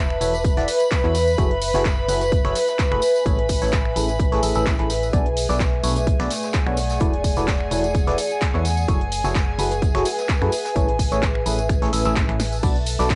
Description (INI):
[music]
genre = piano house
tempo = 128 BPM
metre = 4/4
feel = swing 54% on 16ths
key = unclear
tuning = A4 = 440 Hz
[part]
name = dark studio violin section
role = sustained chords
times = 0.0-13.2 s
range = G#4 to B5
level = -33 LUFS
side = equal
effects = sidechain pumping
[part]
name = organ-like FM bass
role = bass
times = 0.0-13.2 s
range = E1 to F#2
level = -27 LUFS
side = equal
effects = sidechain pumping
[part]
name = warbly tape-like pad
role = texture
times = 0.0-13.2 s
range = A3 to A5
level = -27 LUFS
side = equal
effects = chorus, built-in reverb, sidechain pumping
[part]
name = punchy analog drum machine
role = drums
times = 0.1-13.2 s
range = crash cymbal, finger snaps, handclaps, hi-hat, snare drum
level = -32 LUFS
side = equal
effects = cassette tape
[part]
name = barking FM electric piano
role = riff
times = 0.2-13.1 s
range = A2 to E5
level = -27 LUFS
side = equal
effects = phaser, sidechain pumping, analog delay
[part]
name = jazz brush drum kit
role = drums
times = 0.2-13.2 s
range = hi-hat, snare drum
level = -40 LUFS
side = equal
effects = none
[part]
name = tambourine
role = percussion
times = 0.2-13.2 s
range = none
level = -36 LUFS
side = equal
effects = none
[part]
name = electronic kick drum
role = drums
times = 0.4-13.2 s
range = none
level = -24 LUFS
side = equal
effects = cassette tape
[sound]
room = wet booth ambience, RT60 0.2 s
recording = home recording on cassette, nothing above 11.0 kHz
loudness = -21 LUFS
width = mono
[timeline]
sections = 0.0-13.2 A section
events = drum fill 12.4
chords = 0.0 Esus4; 1.4 F#m9; 3.0 Amaj7; 5.1 Bm7; 7.0 E9sus4; 8.9 F#m9; 10.5 Amaj7; 12.6 Bm7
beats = 0.45 0.91 | 1.38 1.85 2.32 2.79 | 3.26 3.73 4.20 4.66 | 5.13 5.60 6.07 6.54 | 7.01 7.48 7.95 8.41 | 8.88 9.35 9.82 10.29 | 10.76 11.23 11.70 12.16 | 12.63 13.10